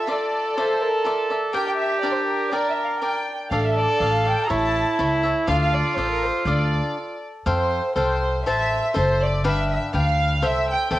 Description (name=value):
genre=mexican folk, mariachi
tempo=122 BPM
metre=2/4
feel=straight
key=D minor, F major from 7.5 s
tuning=A4 = 439 Hz
part: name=warm symphonic violin section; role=melody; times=0.0-11.0 s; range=Bb4 to Bb5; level=-25 LUFS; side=right 1 dB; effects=cassette tape
part: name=clear trumpet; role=second line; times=0.0-7.2 s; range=E4 to Bb4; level=-23 LUFS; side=right 1 dB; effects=cassette tape
part: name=cavaquinho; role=accompaniment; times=0.0-11.0 s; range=D4 to A5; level=-26 LUFS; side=left 2 dB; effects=cassette tape
part: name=upright bass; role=bass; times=3.5-11.0 s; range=Gb1 to F2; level=-24 LUFS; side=equal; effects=none
room=moderate studio reverb, RT60 0.5 s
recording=home recording on cassette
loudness=-19 LUFS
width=side -15 dB against mid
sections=0.0-7.5 A section; 7.5-11.0 B section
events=stop 7.0-7.5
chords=0.0 Dmadd9; 1.5 Gm; 3.5 Dm/A; 4.5 A; 5.5 Dm; 7.5 Fadd9; 8.5 Am; 9.4 G7; 10.4 C6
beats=0.09 | 0.58 1.06 | 1.55 2.04 | 2.53 3.02 | 3.52 4.02 | 4.51 5.00 | 5.49 5.97 | 6.47 6.96 | 7.47 7.97 | 8.46 8.95 | 9.44 9.93 | 10.42 10.92